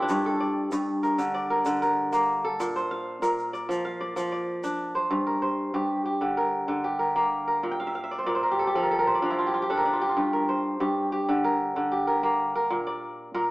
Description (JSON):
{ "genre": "west african traditional, West African string and xylophone music", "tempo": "95 BPM", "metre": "4/4", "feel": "straight", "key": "G dorian", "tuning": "A4 = 442 Hz", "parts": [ { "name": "kora", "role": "arpeggios", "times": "0.0-13.5 s", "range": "G2 to G5", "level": "-24 LUFS", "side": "equal", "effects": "none" }, { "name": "egg shaker", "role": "percussion", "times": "0.1-4.8 s", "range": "none", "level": "-50 LUFS", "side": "left 2 dB", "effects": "none" } ], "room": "moderate stone room reverb, RT60 1.4 s", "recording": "band playing live in one room, small speaker sound", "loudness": "-24 LUFS", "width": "side -20 dB against mid", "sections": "0.0-5.1 A section; 5.1-13.5 B section", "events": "kora fill 7.7-10.2", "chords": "0.1 Gm; 2.6 Bb; 5.1 Gm; 7.6 Bb; 10.2 Gm; 12.7 Bb" }